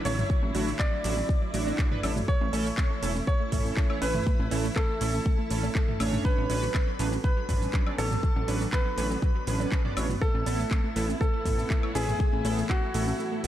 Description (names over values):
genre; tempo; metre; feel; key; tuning
progressive house; 121 BPM; 4/4; straight; A major; A4 = 444 Hz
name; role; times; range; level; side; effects
clear symphonic string section; sustained chords; 0.0-13.5 s; A2 to E4; -37 LUFS; left 1 dB; sidechain pumping
downlifter; sound effects; 0.0-2.3 s; none; -51 LUFS; equal; none
warm baby grand piano; melody; 0.1-13.5 s; F#4 to D5; -34 LUFS; equal; ping-pong delay
airy dreamy lead; second line; 0.1-13.5 s; F#4 to D5; -39 LUFS; equal; chorus, sidechain pumping, ping-pong delay
wide unison pluck; arpeggios; 0.1-13.4 s; F#3 to A3; -36 LUFS; right 1 dB; sidechain pumping, ping-pong delay
chorused polysynth; stabs; 0.1-13.5 s; B3 to D5; -36 LUFS; right 3 dB; sidechain pumping, ping-pong delay
plucky analog bass; bass; 0.1-13.5 s; E1 to A1; -30 LUFS; equal; sidechain pumping
house drum kit; drums; 0.1-13.5 s; handclaps, hi-hat, shaker, woodblock; -36 LUFS; right 1 dB; none
electronic bongos, congas and toms; percussion; 0.1-13.2 s; none; -38 LUFS; right 2 dB; overdrive, sidechain pumping on perc, sidechain pumping on toms
electronic kick drum; drums; 0.3-12.8 s; none; -26 LUFS; equal; none
room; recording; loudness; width
light reverb; dark, warm production; -24 LUFS; side -12 dB against mid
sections
0.0-13.5 A section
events
break 13.2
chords
0.0 Dadd9/A; 2.3 A; 6.2 Bmadd9/A; 10.2 Esus4/A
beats
| 0.30 0.80 1.29 1.79 | 2.28 2.78 3.27 3.77 | 4.27 4.76 5.26 5.75 | 6.25 6.75 7.24 7.74 | 8.23 8.73 9.22 9.72 | 10.22 10.71 11.21 11.70 | 12.20 12.70 13.19